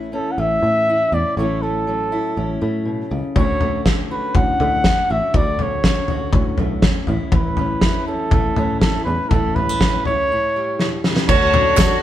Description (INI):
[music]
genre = indie folk with a building arrangement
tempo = 121 BPM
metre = 4/4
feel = straight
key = D major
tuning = A4 = 441 Hz
[part]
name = fingerpicked steel-string acoustic guitar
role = accompaniment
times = 0.0-11.3 s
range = D2 to F#4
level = -25 LUFS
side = left 2 dB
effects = none
[part]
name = picked electric bass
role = bass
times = 0.0-12.0 s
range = A1 to D3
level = -25 LUFS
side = equal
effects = none
[part]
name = mellow trumpet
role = melody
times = 0.1-12.0 s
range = A4 to F#5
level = -20 LUFS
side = equal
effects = none
[part]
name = loose indie drum kit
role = drums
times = 3.4-11.9 s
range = crash cymbal, kick drum, snare drum, toms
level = -18 LUFS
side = equal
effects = none
[part]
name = warm cello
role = second line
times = 11.3-12.0 s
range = F#4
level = -25 LUFS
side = left 6 dB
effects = none
[part]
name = picked steel-string acoustic guitar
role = accompaniment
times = 11.3-12.0 s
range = D3 to A4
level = -25 LUFS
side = left 5 dB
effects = none
[part]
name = clear brass ensemble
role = sustained chords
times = 11.3-12.0 s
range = D3 to F#4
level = -33 LUFS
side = right 1 dB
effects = none
[part]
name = mandolin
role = arpeggios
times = 11.3-12.0 s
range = D4 to C#5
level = -22 LUFS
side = right 8 dB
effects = none
[part]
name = tambourine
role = percussion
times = 11.3-11.9 s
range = none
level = -35 LUFS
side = right 7 dB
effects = none
[part]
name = group handclap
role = percussion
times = 11.8-11.9 s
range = none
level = -27 LUFS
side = right 5 dB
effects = none
[sound]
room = moderate studio reverb, RT60 0.8 s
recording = band playing live in one room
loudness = -16 LUFS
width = side -12 dB against mid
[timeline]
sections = 0.0-11.3 A section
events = drum fill 10.8-11.3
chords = 0.0 A; 1.4 F#m7/A; 3.4 Dmaj7; 7.1 A; 9.3 F#m7/A; 10.3 A7; 11.3 Dmaj7